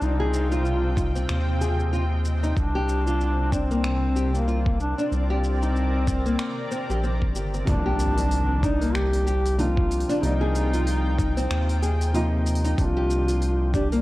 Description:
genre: organic downtempo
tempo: 94 BPM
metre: 4/4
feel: swing 58% on 16ths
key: unclear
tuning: A4 = 439 Hz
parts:
  - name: dark duduk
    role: melody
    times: 0.0-13.9 s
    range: Bb3 to G4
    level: -29 LUFS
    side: equal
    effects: ping-pong delay
  - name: granular cloud pad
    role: sustained chords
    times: 0.0-14.0 s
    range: C3 to G5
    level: -34 LUFS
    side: equal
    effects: built-in reverb, vintage 12-bit sampler grit, sidechain pumping
  - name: round analog bass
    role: bass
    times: 0.0-14.0 s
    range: G1 to Eb2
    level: -24 LUFS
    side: equal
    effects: none
  - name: deep house drum kit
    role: drums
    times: 0.0-14.0 s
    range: finger snaps, hi-hat, shaker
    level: -38 LUFS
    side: equal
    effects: none
  - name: nylon-string guitar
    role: arpeggios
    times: 0.2-14.0 s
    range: Eb3 to Ab4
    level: -29 LUFS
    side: left 1 dB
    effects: ping-pong delay
  - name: electronic kick drum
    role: drums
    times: 1.0-13.9 s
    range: none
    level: -25 LUFS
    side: equal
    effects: overdrive
  - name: felt-muted upright piano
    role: accompaniment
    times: 7.7-14.0 s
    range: C3 to D5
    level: -30 LUFS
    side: right 1 dB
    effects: sidechain pumping, ping-pong delay
  - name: impact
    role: sound effects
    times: 7.7-10.2 s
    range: none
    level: -33 LUFS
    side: equal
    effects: none
room: light reverb, digital ambience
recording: worn, warbling old tape, cassette tape, warbly pitch drift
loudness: -21 LUFS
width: side -17 dB against mid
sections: 0.0-7.7 A section; 7.7-14.0 B section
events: impact 7.7-10.2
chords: 0.0 Fm7/C; 2.6 Gm7/C; 5.1 Cm7; 7.7 Ebmaj7/C; 10.2 Fm7/C; 12.8 Gm7/C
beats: | 0.01 0.65 1.29 1.93 | 2.57 3.21 3.84 4.48 | 5.12 5.76 6.40 7.04 | 7.67 8.31 8.95 9.59 | 10.23 10.86 11.50 12.14 | 12.78 13.42

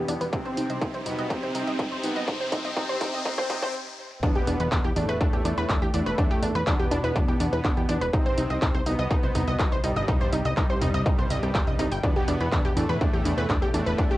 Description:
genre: melodic techno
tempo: 123 BPM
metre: 4/4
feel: straight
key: E minor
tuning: A4 = 439 Hz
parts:
  - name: soft supersaw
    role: melody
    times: 0.0-14.2 s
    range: G2 to C4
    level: -31 LUFS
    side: right 1 dB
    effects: sidechain pumping, cassette tape, tape echo
  - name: sweeping resonant pad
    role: sustained chords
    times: 0.0-3.7 s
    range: C3 to G4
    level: -36 LUFS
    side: equal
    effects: chorus, sidechain pumping, cassette tape
  - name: wide unison pluck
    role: arpeggios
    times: 0.0-14.2 s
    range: D4 to G6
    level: -29 LUFS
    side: equal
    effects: cassette tape, sidechain pumping, analog delay
  - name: plucky analog bass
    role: bass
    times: 0.0-14.2 s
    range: E1 to E2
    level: -30 LUFS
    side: equal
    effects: tube saturation, sidechain pumping
  - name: riser and impact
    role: sound effects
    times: 0.0-6.2 s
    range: none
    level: -36 LUFS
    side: left 2 dB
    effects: none
  - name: techno drum kit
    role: drums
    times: 0.1-14.2 s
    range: handclaps, hi-hat, rim click, toms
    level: -33 LUFS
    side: equal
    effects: overdrive, sidechain pumping on hats, cassette tape, sidechain pumping on toms
  - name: electronic kick drum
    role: drums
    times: 0.3-14.1 s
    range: none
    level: -26 LUFS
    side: equal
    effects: distortion, overdrive, cassette tape
  - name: swarming drone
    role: drone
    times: 6.5-14.2 s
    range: E2 to B2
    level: -40 LUFS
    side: equal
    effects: none
room: light reverb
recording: home recording on cassette, high-pass filter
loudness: -23 LUFS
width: side -16 dB against mid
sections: 0.0-4.2 A section; 4.2-14.2 B section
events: build-up 0.0-4.2; riser 0.0-3.7; filter sweep on synth arpeggio sound 0.0-4.2; filter sweep 0.0-4.2; drum fill 0.3-3.7, 3.9-4.2; stop 3.7-4.2; drop 4.2-14.2; impact 4.2-6.2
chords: 0.3 Cm; 4.2 Em7; 8.1 Cm; 12.0 Em7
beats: | 0.33 0.81 1.30 1.79 | 2.28 2.77 3.25 3.74 | 4.23 4.72 5.21 5.69 | 6.18 6.67 7.16 7.64 | 8.13 8.62 9.11 9.60 | 10.08 10.57 11.06 11.55 | 12.04 12.52 13.01 13.50 | 13.99

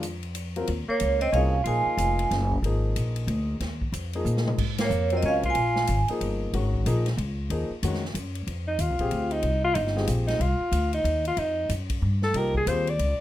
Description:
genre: modal jazz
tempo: 185 BPM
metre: 3/4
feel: swing 62% on 8ths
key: Eb dorian, F dorian from 8.5 s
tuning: A4 = 440 Hz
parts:
  - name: warm grand piano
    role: accompaniment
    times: 0.0-12.9 s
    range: Eb3 to Bb4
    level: -31 LUFS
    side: left 2 dB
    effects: none
  - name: upright bass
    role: bass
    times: 0.0-13.2 s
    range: F1 to Bb2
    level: -26 LUFS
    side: equal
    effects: none
  - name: swinging big-band drum kit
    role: drums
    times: 0.0-13.1 s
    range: crash cymbal, hi-hat, kick drum, ride cymbal, snare drum, toms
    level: -34 LUFS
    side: left 1 dB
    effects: none
  - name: vibraphone with medium hard mallets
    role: melody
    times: 0.9-2.5, 4.8-6.1 s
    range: Db5 to Ab5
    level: -26 LUFS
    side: right 4 dB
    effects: none
  - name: breathy alto saxophone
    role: second line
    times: 0.9-2.5, 4.8-6.1, 8.7-13.2 s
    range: Bb3 to D5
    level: -27 LUFS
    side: equal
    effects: none
room: moderate studio reverb, RT60 0.6 s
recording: rough home demo mix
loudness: -23 LUFS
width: side -13 dB against mid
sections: 0.7-8.5 A section; 8.5-13.2 B section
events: drum fill 4.3-4.6; band accent 4.8; alto saxophone solo 8.5-13.2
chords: 0.0 Fsus4; 0.7 Eb9sus4; 8.5 F9sus4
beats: 0.04 0.36 | 0.69 1.01 1.34 | 1.66 1.99 2.31 | 2.64 2.96 3.29 | 3.61 3.94 4.26 | 4.59 4.91 5.24 | 5.56 5.88 6.21 | 6.53 6.86 7.18 | 7.50 7.83 8.15 | 8.47 8.80 9.12 | 9.45 9.77 10.09 | 10.42 10.74 11.06 | 11.39 11.71 12.04 | 12.36 12.68 13.01

